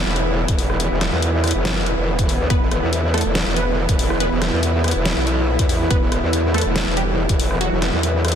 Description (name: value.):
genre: heavy wobble dubstep.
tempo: 141 BPM.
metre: 4/4.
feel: half-time.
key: unclear.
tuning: A4 = 440 Hz.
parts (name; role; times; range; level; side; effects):
supersaw pad; sustained chords; 0.0-8.4 s; E3 to E4; -26 LUFS; right 2 dB; sidechain pumping.
growl bass; bass; 0.0-8.3 s; E1 to E2; -20 LUFS; equal; distortion, chorus, overdrive.
granular cloud pad; texture; 0.0-8.4 s; E4 to E5; -26 LUFS; left 1 dB; built-in reverb, sidechain pumping.
dubstep drum kit; drums; 0.2-8.4 s; hi-hat, rim click, snare drum; -24 LUFS; equal; none.
electronic kick drum; drums; 0.5-7.4 s; none; -20 LUFS; equal; none.
wide unison pluck; melody; 2.5-8.4 s; F#3 to B4; -26 LUFS; right 2 dB; phaser, dub echo.
room: light reverb, digital ambience.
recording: dense, heavily limited modern master.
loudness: -16 LUFS.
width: side -8 dB against mid.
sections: 0.0-8.4 A section.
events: none.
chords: 0.0 E5.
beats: 0.37 | 0.80 1.22 1.65 2.08 | 2.50 2.93 3.35 3.78 | 4.20 4.63 5.05 5.48 | 5.91 6.33 6.76 7.18 | 7.61 8.03.